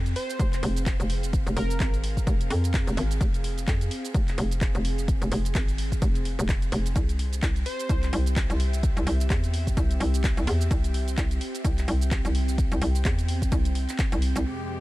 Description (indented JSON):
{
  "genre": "bass house",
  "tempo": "128 BPM",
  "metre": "4/4",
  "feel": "swing 57% on 16ths",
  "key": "unclear",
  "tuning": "A4 = 439 Hz",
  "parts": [
    { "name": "hollow knocking FM bass", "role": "bass", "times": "0.0-14.4 s", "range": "F1 to F2", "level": "-25 LUFS", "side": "equal", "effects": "tube saturation, sidechain pumping" },
    { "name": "airy breathy pad", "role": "texture", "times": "0.0-14.8 s", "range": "Ab3 to G5", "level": "-36 LUFS", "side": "right 2 dB", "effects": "chorus, sidechain pumping" },
    { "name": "garage drum kit", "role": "drums", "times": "0.1-14.7 s", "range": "crash cymbal, handclaps, hi-hat, shaker", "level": "-35 LUFS", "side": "right 1 dB", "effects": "low-pass filter on hats, low-pass filter on cymbals, low-pass filter on perc, low-pass filter on snare, low-pass filter on room" },
    { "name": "plucky unison lead", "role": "melody", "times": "0.2-1.9, 7.7-8.1 s", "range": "Bb4 to C5", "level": "-38 LUFS", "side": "equal", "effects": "ping-pong delay" },
    { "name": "electronic kick drum", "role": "drums", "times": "0.4-14.1 s", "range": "none", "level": "-25 LUFS", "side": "equal", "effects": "overdrive" },
    { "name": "dark symphonic string section", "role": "sustained chords", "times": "14.5-14.8 s", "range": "F2 to G4", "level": "-33 LUFS", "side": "left 2 dB", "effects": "sidechain pumping, low-pass filter" }
  ],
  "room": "digital ambience",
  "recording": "none",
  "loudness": "-23 LUFS",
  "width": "side -18 dB against mid",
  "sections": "0.0-14.5 A section",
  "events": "none",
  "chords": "0.0 Fmadd9; 7.0 C"
}